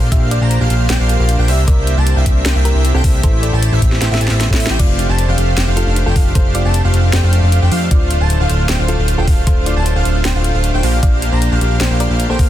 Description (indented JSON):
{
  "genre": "future bass",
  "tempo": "154 BPM",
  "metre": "4/4",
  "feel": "half-time",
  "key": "unclear",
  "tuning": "A4 = 440 Hz",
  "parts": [
    { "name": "airy dreamy lead", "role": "arpeggios", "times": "0.0-12.5 s", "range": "E5 to Bb5", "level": "-25 LUFS", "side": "equal", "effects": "chorus, sidechain pumping" },
    { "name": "soft supersaw", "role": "riff", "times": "0.0-12.5 s", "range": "A3 to Bb5", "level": "-20 LUFS", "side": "right 1 dB", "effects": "sidechain pumping" },
    { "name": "fat analog bass", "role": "bass", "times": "0.0-12.5 s", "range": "D1 to A2", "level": "-14 LUFS", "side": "equal", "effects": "sidechain pumping" },
    { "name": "thumb-piano-like synth pluck", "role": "melody", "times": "0.1-12.5 s", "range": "C4 to F5", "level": "-27 LUFS", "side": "left 1 dB", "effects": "chorus, sidechain pumping, dub echo" },
    { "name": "electronic kick drum", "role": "drums", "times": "0.1-12.5 s", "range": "none", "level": "-13 LUFS", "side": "equal", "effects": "none" },
    { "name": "trap drum kit", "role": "drums", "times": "0.1-12.5 s", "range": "crash cymbal, hi-hat, snare drum", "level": "-22 LUFS", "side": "equal", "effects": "none" }
  ],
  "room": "digital ambience",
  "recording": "dense, heavily limited modern master",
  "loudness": "-12 LUFS",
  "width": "side -12 dB against mid",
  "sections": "0.0-4.8 A section; 4.8-12.5 A section",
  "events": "drop 0.0-4.8, 4.8-12.5; drum fill 4.0-4.8; band accent 4.7",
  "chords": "0.0 Bb69; 1.5 C9; 3.2 Am7; 4.8 F69; 7.9 Dm7; 10.8 Bb69",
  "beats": "| 0.12 0.51 0.90 1.29 | 1.68 2.07 2.46 2.85 | 3.24 3.63 4.01 4.41 | 4.79 5.18 5.57 5.96 | 6.35 6.74 7.13 7.52 | 7.91 8.30 8.69 9.08 | 9.47 9.86 10.25 10.64 | 11.03 11.42 11.81 12.20"
}